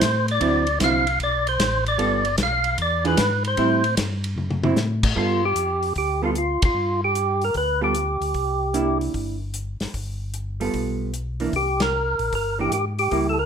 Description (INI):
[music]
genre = soul jazz organ trio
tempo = 151 BPM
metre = 4/4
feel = swing 67% on 8ths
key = G mixolydian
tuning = A4 = 440 Hz
[part]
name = percussive tonewheel organ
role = melody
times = 0.0-9.0, 11.6-13.5 s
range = F4 to F5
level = -22 LUFS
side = equal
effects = slow rotary speaker, overdrive
[part]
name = mellow tonewheel organ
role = bass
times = 0.0-13.5 s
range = G1 to A2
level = -27 LUFS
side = left 1 dB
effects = overdrive, chorus vibrato, slow rotary speaker
[part]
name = warm soul drum kit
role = drums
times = 0.0-13.2 s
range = crash cymbal, hi-hat, kick drum, ride cymbal, snare drum, toms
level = -27 LUFS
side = left 1 dB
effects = none
[part]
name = vintage hollow-body jazz guitar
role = accompaniment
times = 0.4-13.4 s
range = D3 to A4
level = -24 LUFS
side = right 4 dB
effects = none
[sound]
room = light reverb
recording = minimal, uncompressed stereo recording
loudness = -20 LUFS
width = side -7 dB against mid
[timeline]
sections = 0.0-5.2 A section; 5.2-13.5 B section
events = tonewheel organ solo 0.0-5.2; drum fill 4.4-4.8; band accent 6.6, 11.7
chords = 0.4 D9; 2.0 G9; 2.8 E7b9; 3.6 Am7; 4.4 D9; 5.2 G9; 8.3 C9; 9.9 G9; 11.5 C7(no3)